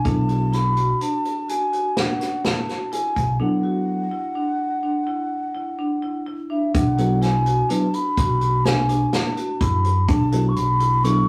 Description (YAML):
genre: progressive instrumental, band music in an uneven meter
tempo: 126 BPM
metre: 7/4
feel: straight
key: B dorian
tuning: A4 = 445 Hz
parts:
  - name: baroque flute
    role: melody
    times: 0.0-11.3 s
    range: E5 to C#6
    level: -26 LUFS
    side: equal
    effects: none
  - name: marimba with hard mallets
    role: arpeggios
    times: 0.0-11.3 s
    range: C#4 to F#4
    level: -29 LUFS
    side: equal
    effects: none
  - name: fingered electric bass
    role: bass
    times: 0.0-11.2 s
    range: B1 to F#2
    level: -24 LUFS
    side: equal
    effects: none
  - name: bell-like tine electric piano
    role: accompaniment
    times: 0.1-11.3 s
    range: F#3 to B4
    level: -26 LUFS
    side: equal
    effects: none
  - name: unplugged drum kit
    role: drums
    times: 0.1-11.2 s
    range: hi-hat, kick drum, snare drum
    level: -27 LUFS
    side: equal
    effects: none
room: wet studio reverb, RT60 0.5 s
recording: rough rehearsal-room recording, small room ambience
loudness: -21 LUFS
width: mono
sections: 0.0-6.7 A section; 6.7-11.3 B section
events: break 3.4-6.7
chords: 0.0 Bm11; 6.7 Bm7